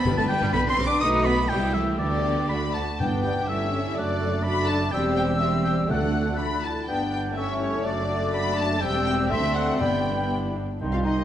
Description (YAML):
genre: quick classical-period movement for symphony orchestra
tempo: 123 BPM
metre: 2/4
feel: straight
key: G major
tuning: A4 = 441 Hz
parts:
  - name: rich symphonic violin section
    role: melody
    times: 0.0-11.2 s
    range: F#4 to B5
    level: -31 LUFS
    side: left 4 dB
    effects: none
  - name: warm chamber violin section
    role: second line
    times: 0.0-11.2 s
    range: G3 to D#6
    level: -33 LUFS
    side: left 2 dB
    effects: none
  - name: warm oboe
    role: second line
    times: 0.0-11.2 s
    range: C#5 to D#6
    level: -30 LUFS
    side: equal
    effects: none
  - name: rich studio viola section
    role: accompaniment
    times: 0.0-11.2 s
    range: D3 to G4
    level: -32 LUFS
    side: right 1 dB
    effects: none
  - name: rich chamber cello section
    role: bass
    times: 0.0-11.2 s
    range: C2 to D#4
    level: -30 LUFS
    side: right 2 dB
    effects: none
  - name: rich chamber double bass section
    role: bass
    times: 0.1-11.2 s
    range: E1 to D2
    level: -30 LUFS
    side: right 2 dB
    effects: none
  - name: timpani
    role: percussion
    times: 0.1-0.5, 3.0-3.5, 5.9-6.6, 9.8-10.5 s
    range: G2 to D3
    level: -32 LUFS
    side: left 2 dB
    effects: none
  - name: clear clarinet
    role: second line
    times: 3.0-11.2 s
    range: B3 to F4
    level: -35 LUFS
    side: left 1 dB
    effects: none
  - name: silver concert flute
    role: second line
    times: 3.0-11.2 s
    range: B5 to F#6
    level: -33 LUFS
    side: left 1 dB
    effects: none
  - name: warm bassoon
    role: accompaniment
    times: 3.0-11.2 s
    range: Eb3 to B3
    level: -32 LUFS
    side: equal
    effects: none
  - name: mellow French horn section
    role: sustained chords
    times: 3.2-11.2 s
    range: G3 to F4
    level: -32 LUFS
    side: left 3 dB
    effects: none
room: wet concert hall reverb, RT60 2.4 s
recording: nothing above 10.8 kHz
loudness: -22 LUFS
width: side -10 dB against mid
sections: 0.0-3.0 A section; 3.0-10.8 B section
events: none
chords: 0.1 G; 0.5 G/B (rootless); 1.0 B7; 1.5 C; 2.0 G/D; 2.5 D; 3.0 G; 3.5 A7/G; 4.0 D/F#; 4.9 C/E; 5.9 D; 6.9 G; 7.4 A7/G; 7.8 D/F#; 8.8 C/E; 9.3 D7; 9.8 G